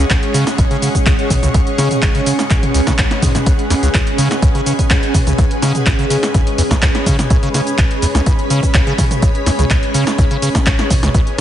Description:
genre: acid house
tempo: 125 BPM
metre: 4/4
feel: straight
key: unclear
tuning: A4 = 438 Hz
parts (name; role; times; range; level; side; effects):
- string machine, full ensemble; sustained chords; 0.0-11.4 s; G#3 to C#6; -22 LUFS; equal; ensemble chorus, sidechain pumping
- acid bass, square; riff; 0.0-11.4 s; B1 to C#3; -18 LUFS; equal; sidechain pumping, tape echo
- granular cloud pad; texture; 0.0-11.4 s; C#4 to F#5; -21 LUFS; right 1 dB; built-in reverb, sidechain pumping
- electronic kick drum; drums; 0.1-11.2 s; none; -15 LUFS; equal; none
- punchy analog drum machine; drums; 0.1-11.4 s; handclaps, hi-hat, ride cymbal, shaker, snare drum, toms; -19 LUFS; equal; none
room: light reverb, digital ambience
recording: heavily compressed radio sound, nothing above 10.7 kHz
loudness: -12 LUFS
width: side -11 dB against mid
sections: 0.0-11.4 A section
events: none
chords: 0.0 C#5

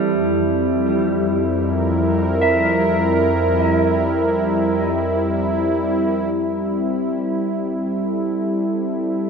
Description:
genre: ambient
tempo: free time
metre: none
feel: none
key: unclear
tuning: A4 = 440 Hz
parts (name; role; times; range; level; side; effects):
- warm analog pad; sustained chords; 0.0-9.3 s; F2 to Bb4; -18 LUFS; equal; chorus
- mellow electric guitar; arpeggios; 0.0-4.9 s; G3 to E5; -22 LUFS; right 2 dB; diffuse ambient delay
room: wet cathedral reverb, RT60 6.8 s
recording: none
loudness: -17 LUFS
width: side -5 dB against mid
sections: 0.0-6.3 A section; 6.3-9.3 B section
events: none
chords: 0.1 Gm/F; 6.3 C6/G

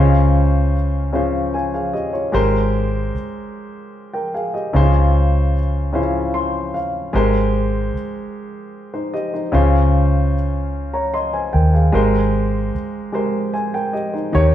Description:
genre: slow six-eight R&B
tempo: 50 BPM (dotted quarters)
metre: 6/8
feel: straight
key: Ab major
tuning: A4 = 440 Hz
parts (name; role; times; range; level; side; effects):
- dark grand piano; accompaniment; 0.0-14.5 s; Db3 to C6; -19 LUFS; left 1 dB; none
- vintage muted fingered electric bass; bass; 0.0-14.5 s; Ab1 to Eb2; -17 LUFS; equal; none
room: wet stone room reverb, RT60 1.4 s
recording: band playing live in one room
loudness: -16 LUFS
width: side -11 dB against mid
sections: 0.0-14.5 A section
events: grand piano fill 5.9-7.1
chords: 0.0 Dbmaj7; 2.3 Abmaj9; 4.7 Dbmaj7; 7.1 Abmaj9; 9.5 Dbmaj7; 11.9 Abmaj9

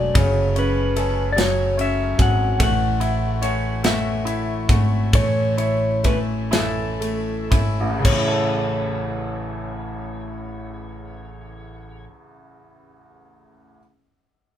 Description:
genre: six-eight pop ballad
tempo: 37-49 BPM (dotted quarters)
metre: 6/8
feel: straight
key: A major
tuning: A4 = 440 Hz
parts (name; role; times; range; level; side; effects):
- clean lap steel guitar; melody; 0.0-12.0 s; A4 to F#5; -24 LUFS; left 1 dB; none
- bright upright piano; accompaniment; 0.0-13.8 s; A1 to C#5; -26 LUFS; equal; none
- direct-recorded clean electric guitar; arpeggios; 0.0-12.2 s; F#2 to G#4; -31 LUFS; left 5 dB; none
- upright bass; bass; 0.0-12.1 s; E1 to A1; -24 LUFS; right 1 dB; none
- modern studio drum kit; drums; 0.2-8.3 s; crash cymbal, kick drum, ride cymbal, snare drum; -22 LUFS; equal; none
room: light reverb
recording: band playing live in one room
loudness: -18 LUFS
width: side -10 dB against mid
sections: 0.0-8.0 A section; 8.0-11.3 B section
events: slowing down 2.6-8.0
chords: 0.0 F#madd9; 2.6 A6; 5.1 A

